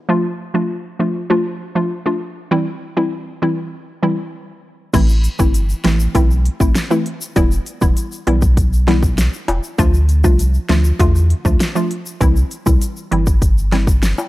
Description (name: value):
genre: dancehall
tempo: 99 BPM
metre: 4/4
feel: straight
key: A minor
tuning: A4 = 440 Hz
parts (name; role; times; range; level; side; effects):
- hollow square pluck; accompaniment; 0.1-13.9 s; D3 to F4; -18 LUFS; equal; chorus, low-pass filter
- warm sub bass; bass; 4.9-14.1 s; E1 to E2; -15 LUFS; equal; none
- pop drum kit; drums; 4.9-14.2 s; crash cymbal, hi-hat, kick drum, snare drum; -16 LUFS; equal; none
- tube shaker and timbales; percussion; 4.9-14.3 s; none; -27 LUFS; left 3 dB; none
room: digital ambience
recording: dry, gritty hardware recording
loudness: -14 LUFS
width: side -17 dB against mid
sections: 0.0-4.9 A section; 4.9-14.3 B section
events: none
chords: 0.1 Dm; 2.5 C; 4.9 Am; 7.4 Em; 9.8 Dm; 12.2 C